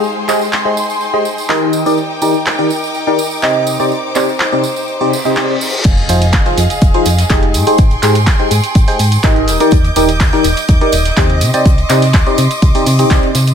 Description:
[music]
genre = piano house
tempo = 124 BPM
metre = 4/4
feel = straight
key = unclear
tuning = A4 = 445 Hz
[part]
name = rich chamber violin section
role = sustained chords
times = 0.0-13.5 s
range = Eb4 to G6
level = -20 LUFS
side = right 1 dB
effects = sidechain pumping
[part]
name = barking FM electric piano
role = riff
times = 0.0-13.3 s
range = C3 to Eb5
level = -15 LUFS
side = left 1 dB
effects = phaser, sidechain pumping, ping-pong delay
[part]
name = tambourine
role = percussion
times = 0.0-13.5 s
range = none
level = -25 LUFS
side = right 8 dB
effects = none
[part]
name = bright studio string section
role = texture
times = 0.0-5.9 s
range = Ab3 to D6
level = -25 LUFS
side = left 3 dB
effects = sidechain pumping
[part]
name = punchy analog drum machine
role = drums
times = 0.3-13.5 s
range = crash cymbal, handclaps, hi-hat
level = -19 LUFS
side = equal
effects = none
[part]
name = reverse cymbal and impact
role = sound effects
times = 5.1-7.8 s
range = none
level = -23 LUFS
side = left 1 dB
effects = none
[part]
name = solid FM bass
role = bass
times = 5.8-13.5 s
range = Eb1 to C3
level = -14 LUFS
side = equal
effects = sidechain pumping
[part]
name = electronic kick drum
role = drums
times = 5.8-13.2 s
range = none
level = -11 LUFS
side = equal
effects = overdrive
[part]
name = soft brush drum kit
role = drums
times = 5.8-13.5 s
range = hi-hat, snare drum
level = -28 LUFS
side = left 3 dB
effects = high-pass filter on hats, high-pass filter on snare, high-pass filter on room
[sound]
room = light reverb, small room ambience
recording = none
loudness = -10 LUFS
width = side -8 dB against mid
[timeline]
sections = 0.0-5.8 A section; 5.8-13.5 B section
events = reverse cymbal 5.1-5.8; drop 5.8-13.5; impact 5.8-7.8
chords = 0.0 Abmaj7; 1.7 Cmadd9; 5.8 Fm7; 7.5 Abmaj7; 9.5 Ebmaj7; 11.4 Cmadd9

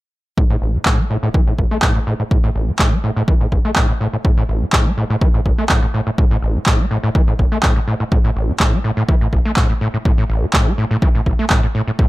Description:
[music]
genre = acid house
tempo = 124 BPM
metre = 4/4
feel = straight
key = unclear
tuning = A4 = 440 Hz
[part]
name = overdriven acid bass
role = riff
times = 0.4-12.1 s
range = A1 to A3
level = -19 LUFS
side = equal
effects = distortion, wide subtle chorus
[part]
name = electronic kick drum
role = drums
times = 0.4-12.1 s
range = none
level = -15 LUFS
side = equal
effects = none
[part]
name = electronic handclaps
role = drums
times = 0.9-11.6 s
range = none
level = -20 LUFS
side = right 1 dB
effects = none
[sound]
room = little or no reverb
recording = none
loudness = -14 LUFS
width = side -18 dB against mid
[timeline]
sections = 0.4-12.1 A section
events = filter sweep on acid bass 0.4-12.1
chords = none

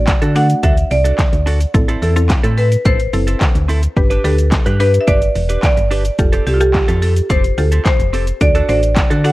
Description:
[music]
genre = dance-pop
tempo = 108 BPM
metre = 4/4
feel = straight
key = G major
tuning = A4 = 440 Hz
[part]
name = marimba with hard mallets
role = melody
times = 0.0-9.3 s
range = F4 to F#5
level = -19 LUFS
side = right 1 dB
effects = tape echo
[part]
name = mallet-like synth pluck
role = accompaniment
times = 0.0-9.3 s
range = A3 to C5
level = -22 LUFS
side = left 1 dB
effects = chorus, sidechain pumping
[part]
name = solid FM bass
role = bass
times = 0.0-9.3 s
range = E1 to D3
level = -15 LUFS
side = equal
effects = sidechain pumping
[part]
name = direct-recorded clean electric guitar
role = riff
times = 0.1-9.3 s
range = C4 to B4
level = -24 LUFS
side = right 3 dB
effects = lush chorus
[part]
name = pop drum kit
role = drums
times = 0.1-9.3 s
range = handclaps, hi-hat, kick drum, shaker, snare drum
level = -16 LUFS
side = equal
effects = none
[sound]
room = digital ambience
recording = worn, warbling old tape, cassette tape, warbly pitch drift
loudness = -12 LUFS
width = side -18 dB against mid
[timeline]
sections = 0.0-9.3 A section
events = none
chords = 0.0 D; 1.7 Am; 4.0 G; 6.2 Fadd9; 8.4 D

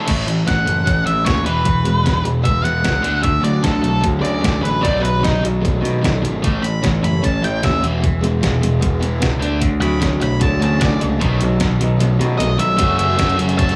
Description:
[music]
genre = indie rock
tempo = 151 BPM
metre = 4/4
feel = straight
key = E major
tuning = A4 = 440 Hz
[part]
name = cranked stack guitar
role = riff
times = 0.0-13.8 s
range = E2 to F#4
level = -25 LUFS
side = equal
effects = overdrive, subtle chorus
[part]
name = crunchy overdriven guitar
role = riff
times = 0.0-13.8 s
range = F#2 to E4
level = -24 LUFS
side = equal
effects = none
[part]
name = modern bright picked electric bass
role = bass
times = 0.1-13.8 s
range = E1 to B2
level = -22 LUFS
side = equal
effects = none
[part]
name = detuned 8-bit digital drum machine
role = drums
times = 0.1-13.8 s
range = crash cymbal, hi-hat, kick drum, snare drum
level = -23 LUFS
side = equal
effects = none
[part]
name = octave-fuzz lead guitar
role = melody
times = 0.5-13.8 s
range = D#4 to B5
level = -24 LUFS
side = equal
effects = distortion, tape echo
[part]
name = warm analog pad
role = sustained chords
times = 6.4-13.8 s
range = D3 to E5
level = -32 LUFS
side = equal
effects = none
[sound]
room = light reverb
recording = small room ambience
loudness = -17 LUFS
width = mono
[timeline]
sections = 0.1-12.8 A section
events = lead electric guitar solo 0.1-12.8; kick and snare drop out 12.0-12.8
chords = 0.1 A; 1.5 E; 3.0 Dmaj7; 4.8 B7; 6.4 A; 7.8 E; 9.4 Dmaj7; 11.2 B7; 12.8 F#m7

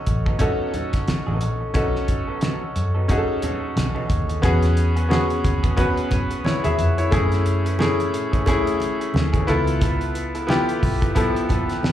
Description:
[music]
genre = lush 1970s-style soul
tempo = 89 BPM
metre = 4/4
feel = swing 58% on 16ths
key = E major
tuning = A4 = 440 Hz
[part]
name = bright concert grand piano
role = accompaniment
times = 0.0-11.9 s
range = E#3 to E5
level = -23 LUFS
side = left 2 dB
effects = slapback echo
[part]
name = vintage muted fingered electric bass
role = bass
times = 0.0-11.1 s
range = A1 to A2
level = -23 LUFS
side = equal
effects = none
[part]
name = electric guitar through a small old amp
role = riff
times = 0.1-11.9 s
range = E3 to A4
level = -33 LUFS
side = right 4 dB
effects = slapback echo
[part]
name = cloth-damped thuddy drum kit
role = drums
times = 0.1-11.9 s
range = hi-hat, kick drum, snare drum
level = -24 LUFS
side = equal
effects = none
[part]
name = congas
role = percussion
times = 0.4-11.9 s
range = none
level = -30 LUFS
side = right 2 dB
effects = none
[sound]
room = studio reverb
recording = live gig heard through the venue's PA, club reverb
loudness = -19 LUFS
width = side -11 dB against mid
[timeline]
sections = 0.0-4.4 A section; 4.4-11.9 B section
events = none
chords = 0.0 B7; 4.4 E69; 7.1 F#m9; 9.5 C#7alt

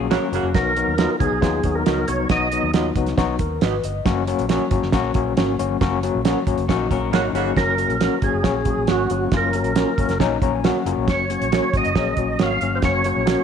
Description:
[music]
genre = uptempo 1960s-style soul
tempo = 137 BPM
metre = 4/4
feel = straight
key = F# major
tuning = A4 = 437 Hz
[part]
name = overdriven tine electric piano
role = accompaniment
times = 0.0-13.4 s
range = F#3 to A#5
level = -23 LUFS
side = left 9 dB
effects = fast tremolo
[part]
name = electric guitar through a small old amp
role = riff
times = 0.0-0.5, 6.7-7.5 s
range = D#4 to A#4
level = -31 LUFS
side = left 9 dB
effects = spring reverb
[part]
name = vintage muted fingered electric bass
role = bass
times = 0.0-13.3 s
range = E#1 to D#2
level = -27 LUFS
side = equal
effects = none
[part]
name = warm saxophone section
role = second line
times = 0.1-0.5, 7.1-7.5 s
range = C#3 to F#4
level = -28 LUFS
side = right 10 dB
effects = none
[part]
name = electric guitar through a small old amp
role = stabs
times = 0.1-13.4 s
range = C#4 to D#5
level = -28 LUFS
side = right 10 dB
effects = none
[part]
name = cloth-damped thuddy drum kit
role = drums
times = 0.1-13.4 s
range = hi-hat, kick drum, snare drum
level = -23 LUFS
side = right 4 dB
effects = none
[part]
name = percussive tonewheel organ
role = melody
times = 0.5-2.7, 7.6-13.4 s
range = F#4 to E#5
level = -23 LUFS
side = right 3 dB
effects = overdrive, chorus vibrato, slow rotary speaker
[sound]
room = moderate echo chamber reverb, RT60 1.6 s, small room ambience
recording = 1960s-style stereo with parts hard left and right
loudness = -18 LUFS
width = side -7 dB against mid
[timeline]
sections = 0.0-7.6 A section; 7.6-13.4 A section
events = band accent 0.0-0.5, 5.8-7.6; tine electric piano fill 10.2-11.1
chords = 0.0 F#; 0.5 B; 4.1 F#

